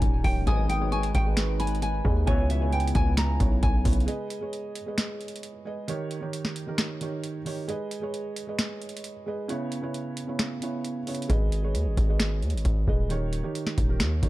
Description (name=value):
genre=hip hop, trap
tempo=133 BPM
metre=4/4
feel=half-time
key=G# harmonic minor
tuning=A4 = 440 Hz
part: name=nylon-string guitar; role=melody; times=0.0-4.1 s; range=C#5 to A#5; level=-32 LUFS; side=left 1 dB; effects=ping-pong delay
part: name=soft synth bell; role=second line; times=0.0-4.0 s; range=G#5 to D#6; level=-38 LUFS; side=equal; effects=chorus, phaser, ping-pong delay
part: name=felt-muted upright piano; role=accompaniment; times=0.0-14.3 s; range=C#3 to D#5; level=-32 LUFS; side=right 2 dB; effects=none
part: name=hollow soft pad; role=sustained chords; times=0.0-4.1 s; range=C#3 to B4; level=-36 LUFS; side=equal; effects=chorus
part: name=distorted 808-style bass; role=bass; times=0.0-4.1, 11.3-14.3 s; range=C#1 to D#2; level=-26 LUFS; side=equal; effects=distortion
part: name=booming analog drum machine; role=drums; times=0.0-14.3 s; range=finger snaps, hi-hat, kick drum, snare drum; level=-27 LUFS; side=equal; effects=none
part: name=warm brass ensemble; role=stabs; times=0.5-2.7 s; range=B1 to E3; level=-37 LUFS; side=left 6 dB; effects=ping-pong delay
room=small room ambience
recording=dark, warm production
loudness=-25 LUFS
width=side -17 dB against mid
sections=0.0-4.1 A section; 4.1-14.3 B section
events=break 4.1-11.3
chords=0.5 G#m; 2.3 C#m7; 4.1 G#m; 5.9 D#7; 7.7 G#m; 9.5 C#m7; 11.3 G#m; 13.1 D#7